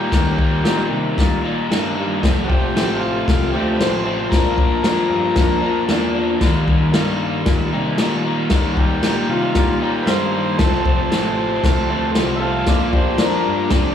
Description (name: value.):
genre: garage rock duo or trio.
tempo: 115 BPM.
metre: 4/4.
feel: straight.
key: unclear.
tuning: A4 = 440 Hz.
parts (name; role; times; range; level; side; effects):
overdriven combo organ; melody; 0.0-13.9 s; Bb3 to F5; -23 LUFS; equal; spring reverb, slapback echo, tape echo.
crunchy overdriven guitar; riff; 0.0-13.9 s; F2 to Eb4; -20 LUFS; left 1 dB; slapback echo.
growling picked electric bass; bass; 0.0-13.9 s; F1 to C3; -24 LUFS; equal; overdrive, tube saturation.
vintage drum kit; drums; 0.1-13.8 s; crash cymbal, kick drum, snare drum; -19 LUFS; left 1 dB; none.
room: light reverb.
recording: live gig heard through the venue's PA, club reverb.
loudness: -15 LUFS.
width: side -9 dB against mid.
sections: 0.0-13.9 A section.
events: transistor combo organ solo 0.0-13.9.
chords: 0.0 Eb; 2.2 F; 4.3 Bb; 6.4 Eb; 10.6 F; 12.7 Bb.